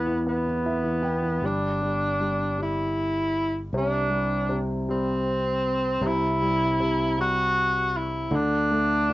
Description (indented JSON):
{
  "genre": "six-eight pop ballad",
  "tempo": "52 BPM (dotted quarters)",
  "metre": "6/8",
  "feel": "straight",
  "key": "G major",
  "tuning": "A4 = 440 Hz",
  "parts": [
    { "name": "warm tenor saxophone", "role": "melody", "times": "0.0-9.1 s", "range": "B3 to F#4", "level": "-25 LUFS", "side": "equal", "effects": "cassette tape" },
    { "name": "warm upright piano", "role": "accompaniment", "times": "0.0-9.1 s", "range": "C3 to G5", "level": "-29 LUFS", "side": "left 1 dB", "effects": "cassette tape" },
    { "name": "fingered electric bass", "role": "bass", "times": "0.0-9.1 s", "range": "G1 to E2", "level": "-30 LUFS", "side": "equal", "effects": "none" }
  ],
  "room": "moderate small room reverb, RT60 0.5 s",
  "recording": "home recording on cassette, nothing above 7.7 kHz",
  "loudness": "-22 LUFS",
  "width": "side -17 dB against mid",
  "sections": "0.0-1.4 A section; 1.4-9.1 B section",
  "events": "upright piano fill 0.3-1.4",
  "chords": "0.0 E5; 1.4 G5; 3.7 C5; 8.3 D5",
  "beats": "0.26 | 1.43 2.59 | 3.73 4.88 | 6.02 7.17 | 8.31"
}